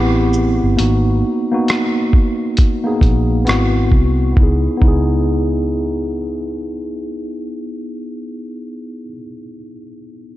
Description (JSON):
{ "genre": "lo-fi hip hop", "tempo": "67 BPM", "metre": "4/4", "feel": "swing 63% on 16ths", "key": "C# dorian", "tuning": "A4 = 440 Hz", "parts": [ { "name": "mellow tine electric piano", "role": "accompaniment", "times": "0.0-10.4 s", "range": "A#3 to G#4", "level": "-18 LUFS", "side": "equal", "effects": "fast stereo tremolo, low-pass filter" }, { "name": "vintage muted fingered electric bass", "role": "bass", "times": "0.0-9.1 s", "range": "G1 to C#2", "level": "-17 LUFS", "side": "equal", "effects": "none" }, { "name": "lo-fi sampler-style drum kit", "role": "drums", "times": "0.3-5.1 s", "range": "hi-hat, kick drum, rim click, shaker", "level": "-15 LUFS", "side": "equal", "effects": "none" } ], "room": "light reverb", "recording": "none", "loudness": "-14 LUFS", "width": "side -15 dB against mid", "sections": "0.0-4.4 A section; 4.4-7.9 B section", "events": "none", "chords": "0.0 Am9; 0.8 G#m9; 3.5 G#7alt; 4.4 C#m9" }